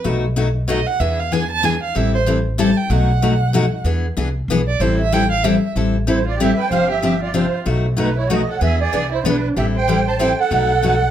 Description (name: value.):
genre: acoustic string swing (jazz manouche).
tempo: 189 BPM.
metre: 3/4.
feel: swing 59% on 8ths.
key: A minor.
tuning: A4 = 440 Hz.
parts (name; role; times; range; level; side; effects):
picked steel-string acoustic guitar; accompaniment; 0.0-10.9 s; B2 to A4; -20 LUFS; left 3 dB; none.
upright bass; bass; 0.1-11.1 s; G1 to E2; -20 LUFS; equal; none.
dark violin; second line; 0.7-11.1 s; D4 to A5; -22 LUFS; right 4 dB; none.
musette accordion; melody; 6.1-11.1 s; B4 to A5; -21 LUFS; right 5 dB; plate reverb, tape echo.
room: moderate club reverb, RT60 0.7 s.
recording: none.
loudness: -15 LUFS.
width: side -10 dB against mid.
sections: 0.0-5.8 A section; 5.8-11.1 B section.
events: violin solo 0.0-5.8.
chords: 0.0 B7; 1.0 E7; 2.0 Am7; 2.9 B7; 3.9 E7b13; 4.8 Am7; 6.7 G7sus4; 7.7 B7; 8.6 E7; 9.6 Am7; 10.5 B7.